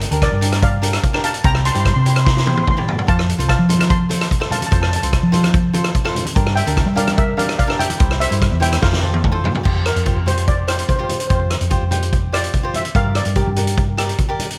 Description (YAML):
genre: calypso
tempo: 146 BPM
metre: 4/4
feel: straight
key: F major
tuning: A4 = 440 Hz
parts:
  - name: hollow-body short-scale fingered electric bass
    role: bass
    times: 0.0-14.1 s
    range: C2 to G3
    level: -21 LUFS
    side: equal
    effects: none
  - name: street-band drum kit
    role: drums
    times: 0.0-14.6 s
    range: crash cymbal, hi-hat, kick drum, rim click, snare drum, toms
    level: -21 LUFS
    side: equal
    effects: none
  - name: cavaquinho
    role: accompaniment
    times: 0.1-14.5 s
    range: D4 to D5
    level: -28 LUFS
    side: equal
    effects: none
  - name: steel pan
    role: melody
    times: 0.2-13.9 s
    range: G4 to C6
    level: -25 LUFS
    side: equal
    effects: delay
  - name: congas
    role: percussion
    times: 3.7-14.5 s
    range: none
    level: -31 LUFS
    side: equal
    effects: none
room: light reverb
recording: none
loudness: -17 LUFS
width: mono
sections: 0.0-9.6 A section; 9.6-14.6 B section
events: drum fill 2.3-3.1, 8.8-9.6; steel pan solo 9.6-14.6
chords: 0.0 Gm7; 1.4 C; 3.1 F; 6.4 Gm; 8.0 C; 8.8 F; 9.6 Fsus2; 12.9 Gm